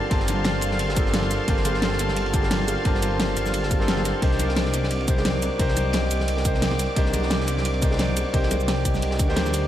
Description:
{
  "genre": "liquid drum and bass",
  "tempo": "175 BPM",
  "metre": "4/4",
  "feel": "swing 54% on 16ths",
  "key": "unclear",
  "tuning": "A4 = 440 Hz",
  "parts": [
    { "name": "clear concert grand piano", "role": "accompaniment", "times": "0.0-9.7 s", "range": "Bb3 to A5", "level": "-29 LUFS", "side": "left 1 dB", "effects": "ping-pong delay" },
    { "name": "lush unison pad", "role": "sustained chords", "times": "0.0-9.7 s", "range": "F5 to D6", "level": "-31 LUFS", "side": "equal", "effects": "chorus, sidechain pumping" },
    { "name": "vibraphone with soft mallets", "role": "arpeggios", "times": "0.0-9.7 s", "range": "F4 to G5", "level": "-29 LUFS", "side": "right 2 dB", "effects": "ping-pong delay" },
    { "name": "dark detuned saw bass", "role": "bass", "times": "0.1-9.7 s", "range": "G1 to D2", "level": "-26 LUFS", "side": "equal", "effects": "none" },
    { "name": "crunchy breakbeat drum kit", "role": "drums", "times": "0.1-9.6 s", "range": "ride cymbal, snare drum", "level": "-34 LUFS", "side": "equal", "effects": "high-pass filter on cymbals, high-pass filter on snare, high-pass filter on room" },
    { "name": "electronic kick drum", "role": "drums", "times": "0.1-9.3 s", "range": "none", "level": "-24 LUFS", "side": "equal", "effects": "overdrive" },
    { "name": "pop drum kit", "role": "drums", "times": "0.1-9.6 s", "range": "hi-hat, shaker, snare drum", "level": "-28 LUFS", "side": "equal", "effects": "overdrive" },
    { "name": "congas and bongos", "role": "percussion", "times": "0.3-9.5 s", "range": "none", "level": "-34 LUFS", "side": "right 2 dB", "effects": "none" }
  ],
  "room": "light reverb, studio ambience",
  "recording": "none",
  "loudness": "-20 LUFS",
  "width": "side -12 dB against mid",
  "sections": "0.0-9.7 A section",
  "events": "none",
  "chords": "0.0 Gm11; 4.2 Cm9"
}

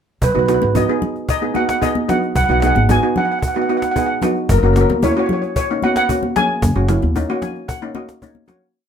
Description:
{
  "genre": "calypso",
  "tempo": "112 BPM",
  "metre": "4/4",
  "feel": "straight",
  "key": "B major",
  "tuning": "A4 = 440 Hz",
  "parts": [
    { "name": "steel pan", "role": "melody", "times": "0.2-8.2 s", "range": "A#4 to G#5", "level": "-19 LUFS", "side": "equal", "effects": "none" },
    { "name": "upright bass", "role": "bass", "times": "0.2-7.2 s", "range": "F#1 to D#2", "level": "-17 LUFS", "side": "equal", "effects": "none" },
    { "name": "cajon", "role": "drums", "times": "0.2-8.7 s", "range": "none", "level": "-23 LUFS", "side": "equal", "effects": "none" },
    { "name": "steel pan", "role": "accompaniment", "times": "0.3-8.7 s", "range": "A#3 to G#5", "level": "-20 LUFS", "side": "right 1 dB", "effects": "none" },
    { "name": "congas", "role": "percussion", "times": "0.6-8.6 s", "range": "none", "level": "-24 LUFS", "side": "left 2 dB", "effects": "none" }
  ],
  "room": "moderate small room reverb, RT60 0.5 s",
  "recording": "minimal, uncompressed stereo recording",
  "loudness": "-14 LUFS",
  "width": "side -8 dB against mid",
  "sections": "0.2-8.8 verse",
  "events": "fade-out 6.6-8.8; steel pan fill 7.2-8.8",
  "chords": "0.2 B; 4.5 F#add9"
}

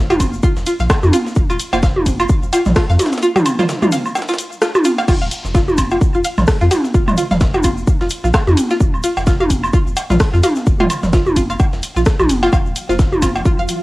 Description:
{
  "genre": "minimal techno",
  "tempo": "129 BPM",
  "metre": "4/4",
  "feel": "swing 58% on 16ths",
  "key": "unclear",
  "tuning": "A4 = 440 Hz",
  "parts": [
    { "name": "round analog bass", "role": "bass", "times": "0.0-13.7 s", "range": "Eb1 to F2", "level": "-19 LUFS", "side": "equal", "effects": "sidechain pumping" },
    { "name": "string-like resonator pluck", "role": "riff", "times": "0.1-13.6 s", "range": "F4 to F5", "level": "-20 LUFS", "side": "equal", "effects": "lush chorus, sidechain pumping, tape echo" },
    { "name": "egg shaker", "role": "percussion", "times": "0.1-13.8 s", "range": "none", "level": "-33 LUFS", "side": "left 7 dB", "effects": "none" },
    { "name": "electronic toms, cowbell and woodblock", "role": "percussion", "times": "0.1-13.4 s", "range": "none", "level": "-17 LUFS", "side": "equal", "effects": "overdrive, studio reverb, cassette tape, tape echo" },
    { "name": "breakbeat sampler-style drum kit", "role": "drums", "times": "0.2-13.8 s", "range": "hi-hat, shaker, snare drum", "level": "-30 LUFS", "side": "equal", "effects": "high-pass filter on perc, studio reverb, cassette tape, high-pass filter on snare, high-pass filter on hats" },
    { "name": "electronic kick drum", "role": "drums", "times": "0.2-13.6 s", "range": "none", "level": "-15 LUFS", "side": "equal", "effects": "studio reverb, cassette tape" },
    { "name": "techno drum kit", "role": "drums", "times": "0.2-13.8 s", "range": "crash cymbal, hi-hat, ride cymbal, rim click", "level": "-23 LUFS", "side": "equal", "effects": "overdrive, studio reverb, cassette tape" },
    { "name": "wavetable chord stab", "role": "stabs", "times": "1.7-3.7, 12.9 s", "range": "Bb3 to C5", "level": "-28 LUFS", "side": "right 6 dB", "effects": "none" },
    { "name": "flickering grainy texture", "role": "texture", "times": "12.8-13.8 s", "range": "F3 to F4", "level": "-27 LUFS", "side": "equal", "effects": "built-in reverb, sidechain pumping" }
  ],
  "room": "light reverb, digital ambience",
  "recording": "home recording on cassette",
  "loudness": "-13 LUFS",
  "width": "side -20 dB against mid",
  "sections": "0.0-5.1 A section; 5.1-13.8 A section",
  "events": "drop 0.0-5.1, 5.1-13.8",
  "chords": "none"
}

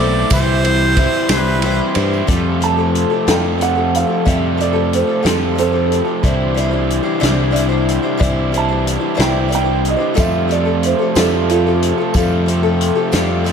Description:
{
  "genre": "folk rock and heartland rock",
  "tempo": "61 BPM (dotted quarters)",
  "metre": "6/8",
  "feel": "straight",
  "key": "unclear",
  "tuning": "A4 = 439 Hz",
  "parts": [
    { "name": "clear harmonica", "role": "melody", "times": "0.0-1.9 s", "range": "C5 to D5", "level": "-20 LUFS", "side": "right 1 dB", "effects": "none" },
    { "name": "picked twelve-string acoustic guitar", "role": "accompaniment", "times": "0.0-13.5 s", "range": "C3 to C5", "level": "-21 LUFS", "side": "left 7 dB", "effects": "none" },
    { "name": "hand-pumped harmonium", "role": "sustained chords", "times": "0.0-13.5 s", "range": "D3 to C5", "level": "-29 LUFS", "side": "right 1 dB", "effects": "none" },
    { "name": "raw garage guitar", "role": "riff", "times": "0.0-13.5 s", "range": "F2 to F4", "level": "-20 LUFS", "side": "right 1 dB", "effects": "overdrive" },
    { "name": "picked electric bass", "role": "bass", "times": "0.0-13.5 s", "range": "B1 to G2", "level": "-18 LUFS", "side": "equal", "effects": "none" },
    { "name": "vintage drum kit", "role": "drums", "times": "0.3-13.5 s", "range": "hi-hat, kick drum, ride cymbal, snare drum", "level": "-20 LUFS", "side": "equal", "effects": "none" },
    { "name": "tambourine", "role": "percussion", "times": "0.3-2.2, 10.2-13.3 s", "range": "none", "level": "-34 LUFS", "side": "right 13 dB", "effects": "none" },
    { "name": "dark upright piano", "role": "second line", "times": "2.6-12.8 s", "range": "F4 to A5", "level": "-20 LUFS", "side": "right 7 dB", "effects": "slapback echo" }
  ],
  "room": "light reverb, studio ambience",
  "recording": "none",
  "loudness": "-13 LUFS",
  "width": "side -7 dB against mid",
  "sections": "0.0-2.3 A section; 2.3-13.5 B section",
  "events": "upright piano solo 2.3-13.5",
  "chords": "0.3 C; 2.3 Fadd9; 6.2 Cadd9; 10.2 Fadd9"
}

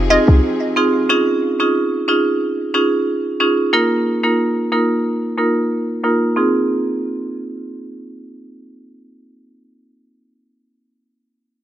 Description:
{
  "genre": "dancehall",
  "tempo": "91 BPM",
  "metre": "4/4",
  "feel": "straight",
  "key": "F minor",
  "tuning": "A4 = 440 Hz",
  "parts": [
    { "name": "warm studio string section", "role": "sustained chords", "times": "0.0-1.1 s", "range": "F3 to Ab4", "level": "-26 LUFS", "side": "left 3 dB", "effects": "none" },
    { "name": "marimba with hard mallets", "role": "accompaniment", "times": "0.1-9.7 s", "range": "Bb3 to Bb4", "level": "-16 LUFS", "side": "right 1 dB", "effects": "low-pass filter" }
  ],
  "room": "studio reverb",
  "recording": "dry, gritty hardware recording, cassette tape",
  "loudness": "-15 LUFS",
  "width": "side -12 dB against mid",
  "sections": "0.0-1.1 A section; 1.1-6.4 B section; 6.4-9.0 C section",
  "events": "filter sweep on marimba 1.1-6.4",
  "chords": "0.0 Fm7; 1.1 Dbadd9; 3.7 Ebsus2; 6.4 Fm7"
}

